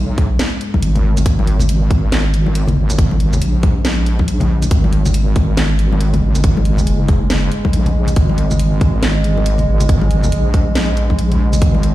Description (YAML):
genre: deep dubstep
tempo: 139 BPM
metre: 4/4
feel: swing 60% on 16ths, half-time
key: unclear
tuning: A4 = 436 Hz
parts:
  - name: dark analog pad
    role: sustained chords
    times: 0.0-11.9 s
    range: G#3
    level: -23 LUFS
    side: right 1 dB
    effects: lush chorus
  - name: wobble bass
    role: bass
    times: 0.0-11.9 s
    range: F#1 to B1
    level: -15 LUFS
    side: equal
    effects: chorus
  - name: electronic kick drum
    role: drums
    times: 0.2-11.7 s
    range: none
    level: -14 LUFS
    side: equal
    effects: small room ambience
  - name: garage drum kit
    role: drums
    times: 0.2-11.9 s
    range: hi-hat, shaker, snare drum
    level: -23 LUFS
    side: equal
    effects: small room ambience
  - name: congas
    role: percussion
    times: 0.2-11.8 s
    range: none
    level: -22 LUFS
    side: left 3 dB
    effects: dub echo
room: little or no reverb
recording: played on a big sound system in a bare room, large studio reverb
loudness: -12 LUFS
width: side -15 dB against mid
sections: 0.0-11.9 A section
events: none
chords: 0.0 G#sus2